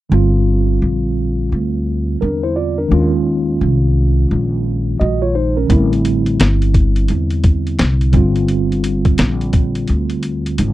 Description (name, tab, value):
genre	hip hop, jazz-hop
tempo	86 BPM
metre	4/4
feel	swing 64% on 16ths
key	unclear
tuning	A4 = 440 Hz
part	mellow tine electric piano	accompaniment	0.1-10.7 s	D3 to Eb5	-17 LUFS	right 1 dB	slow stereo tremolo
part	upright bass	bass	0.1-10.7 s	G1 to E2	-16 LUFS	equal	none
part	dusty soul sampler-style drum kit	drums	5.7-10.7 s	hi-hat, kick drum, snare drum	-15 LUFS	equal	none
room	little or no reverb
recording	dry, close 1970s-style studio recording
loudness	-13 LUFS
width	side -15 dB against mid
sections	0.1-10.7 A section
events	drum fill 9.9-10.7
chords	0.1 Gm7; 2.9 Ebsus2; 5.7 Am7; 8.1 Gm7